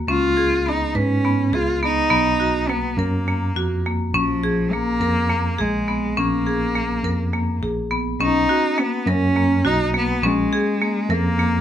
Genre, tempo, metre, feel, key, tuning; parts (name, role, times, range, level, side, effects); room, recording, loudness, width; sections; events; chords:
contemporary instrumental, chamber music in an uneven meter; 207 BPM (eighths); 7/8; straight; Bb phrygian; A4 = 440 Hz
marimba with hard mallets; arpeggios; 0.0-11.6 s; A#3 to Cb5; -23 LUFS; left 1 dB
overdriven tine electric piano; bass; 0.0-11.6 s; Bb1 to Ab2; -24 LUFS; equal; fast tremolo
rich cello; melody; 0.1-11.6 s; F3 to F4; -21 LUFS; equal
light reverb; close, detailed microphones; -18 LUFS; side -10 dB against mid
0.0-8.2 A section; 8.2-11.6 B section
0.1 Db7; 2.1 Bmaj7; 4.1 Bb7(no3); 8.2 Bmaj9; 10.2 Bbm7